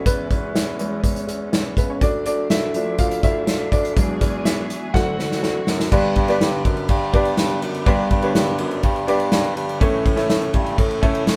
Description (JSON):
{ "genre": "piano-driven pop", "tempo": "123 BPM", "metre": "4/4", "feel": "straight", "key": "unclear", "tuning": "A4 = 441 Hz", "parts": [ { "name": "warm concert grand piano", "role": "accompaniment", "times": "0.0-11.4 s", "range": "G2 to F#5", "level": "-26 LUFS", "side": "equal", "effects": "none" }, { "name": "muted studio string section", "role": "sustained chords", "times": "0.0-11.4 s", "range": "C#3 to G#4", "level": "-34 LUFS", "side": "equal", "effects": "none" }, { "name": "warm bassoon", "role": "bass", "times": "0.1-11.4 s", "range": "C#2 to A2", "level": "-26 LUFS", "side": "equal", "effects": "none" }, { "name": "unplugged drum kit", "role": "drums", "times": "0.1-11.4 s", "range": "crash cymbal, hi-hat, kick drum, ride cymbal, snare drum", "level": "-23 LUFS", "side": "equal", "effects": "none" } ], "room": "moderate studio reverb, RT60 0.9 s", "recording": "band playing live in one room", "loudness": "-20 LUFS", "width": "mono", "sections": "0.0-5.9 A section; 5.9-11.4 B section", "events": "grand piano solo 0.0-5.9; drum fill 4.9-5.9", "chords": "0.0 E; 2.0 Dm; 4.0 E7; 4.9 D7; 5.9 G; 9.8 A" }